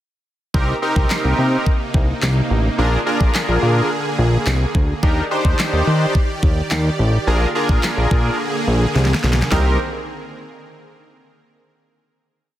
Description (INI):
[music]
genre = dance-pop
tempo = 107 BPM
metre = 4/4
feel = straight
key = C minor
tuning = A4 = 441 Hz
[part]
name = big bright polysynth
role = accompaniment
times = 0.5-9.8 s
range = C4 to C5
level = -20 LUFS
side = equal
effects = chorus, sidechain pumping
[part]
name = supersaw pad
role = sustained chords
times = 0.5-9.8 s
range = C3 to D5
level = -24 LUFS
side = right 1 dB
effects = sidechain pumping
[part]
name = fat analog bass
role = bass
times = 0.5-9.8 s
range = A1 to Eb3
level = -17 LUFS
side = equal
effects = sidechain pumping
[part]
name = pop drum kit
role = drums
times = 0.5-9.6 s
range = handclaps, kick drum, snare drum, toms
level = -18 LUFS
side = equal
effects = none
[sound]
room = light reverb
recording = dense, heavily limited modern master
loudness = -15 LUFS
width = side -13 dB against mid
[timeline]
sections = 0.5-9.5 verse; 9.5-11.8 final chord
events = drum fill 9.0-9.5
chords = 0.5 Cm7; 2.8 Bb7; 5.0 Ebmaj7; 7.3 Bb7; 9.5 Cm7